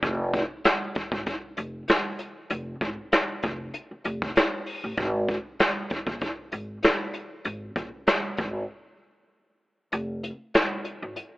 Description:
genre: hip hop, boom-bap hip-hop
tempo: 97 BPM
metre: 4/4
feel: swing 54% on 16ths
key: F minor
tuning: A4 = 440 Hz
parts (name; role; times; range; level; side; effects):
- upright bass; bass; 0.0-11.1 s; F1 to Bb1; -31 LUFS; equal; none
- jazz brush drum kit; drums; 0.0-11.3 s; hi-hat, kick drum, snare drum; -24 LUFS; equal; none
room: light reverb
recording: telephone sound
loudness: -25 LUFS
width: side -20 dB against mid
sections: 0.0-9.9 A section; 9.9-11.4 B section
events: break 8.7-9.9; kick muted 9.9-11.4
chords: none

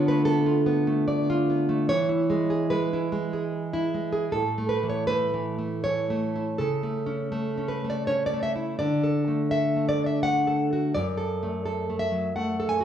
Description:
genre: romantic piece for solo classical guitar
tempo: 71-88 BPM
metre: 3/4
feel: rubato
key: A major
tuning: A4 = 441 Hz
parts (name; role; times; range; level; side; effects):
- nylon-string guitar; solo; 0.0-12.8 s; F#2 to G#5; -23 LUFS; right 1 dB; none
room: moderate recital hall reverb, RT60 1.4 s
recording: worn, warbling old tape, cassette tape, warbly pitch drift, studio reverb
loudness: -23 LUFS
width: side -9 dB against mid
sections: 0.0-4.3 A section; 4.3-12.8 B section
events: none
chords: 0.0 Bm7b5/D; 1.9 E; 4.3 A; 6.6 A/C#; 8.8 D; 11.0 D/F#

